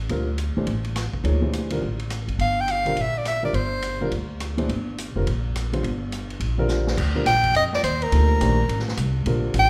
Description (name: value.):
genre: modal jazz.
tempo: 209 BPM.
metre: 4/4.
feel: swing 62% on 8ths.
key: unclear.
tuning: A4 = 440 Hz.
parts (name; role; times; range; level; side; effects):
upright bass; bass; 0.0-9.7 s; F1 to F2; -26 LUFS; equal; none.
warm grand piano; accompaniment; 0.1-9.7 s; C3 to C#5; -30 LUFS; equal; none.
vintage drum kit; drums; 0.1-9.6 s; crash cymbal, hi-hat, kick drum, ride cymbal, rim click, snare drum; -35 LUFS; equal; none.
bright soprano saxophone; melody; 2.4-4.1, 7.3-9.7 s; Bb4 to G5; -24 LUFS; equal; none.
room: moderate recital hall reverb, RT60 1.6 s.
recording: recorded in a church or concert hall.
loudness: -23 LUFS.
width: mono.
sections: 0.0-7.0 A section; 7.0-9.7 B section.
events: drum fill 6.7.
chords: 0.0 Dm11; 2.4 Gm11; 7.0 Gm9.